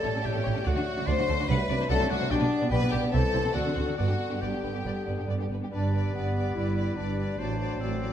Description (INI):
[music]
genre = quick classical-period movement for symphony orchestra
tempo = 145 BPM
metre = 4/4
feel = rubato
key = G major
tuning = A4 = 440 Hz
[part]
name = rich chamber violin section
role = melody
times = 0.0-8.1 s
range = F#4 to G5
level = -40 LUFS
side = left 4 dB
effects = none
[part]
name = clear chamber violin section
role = second line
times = 0.0-8.1 s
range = D4 to C5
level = -35 LUFS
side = left 4 dB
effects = none
[part]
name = clear clarinet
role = second line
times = 0.0-8.1 s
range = A3 to E4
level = -37 LUFS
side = left 2 dB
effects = none
[part]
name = clear oboe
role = second line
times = 0.0-8.1 s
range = B4 to C6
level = -37 LUFS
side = equal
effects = none
[part]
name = mellow hollow concert flute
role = second line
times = 0.0-5.5 s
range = C5 to D5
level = -40 LUFS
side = left 1 dB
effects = none
[part]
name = mellow bassoon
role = accompaniment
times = 0.0-8.1 s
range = D3 to G3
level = -37 LUFS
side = right 2 dB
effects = none
[part]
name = rich chamber viola section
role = accompaniment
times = 0.0-8.1 s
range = F#3 to B4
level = -38 LUFS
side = equal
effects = none
[part]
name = mellow French horn section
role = sustained chords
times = 0.0-8.1 s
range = B3 to C5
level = -35 LUFS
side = left 5 dB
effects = none
[part]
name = rich chamber double bass section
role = bass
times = 0.0-8.1 s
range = G1 to D2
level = -31 LUFS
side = right 2 dB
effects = none
[part]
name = dark studio cello section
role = bass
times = 0.1-8.1 s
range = G2 to D3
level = -31 LUFS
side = right 2 dB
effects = none
[sound]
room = moderate recital hall reverb, RT60 1.5 s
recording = none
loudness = -25 LUFS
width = side -10 dB against mid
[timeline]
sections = 0.0-5.7 A section; 5.7-8.1 B section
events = none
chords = 0.0 A7; 0.7 D; 1.5 D7/C; 2.3 G/B; 3.1 Am; 3.5 D7; 4.0 G; 7.4 D7/A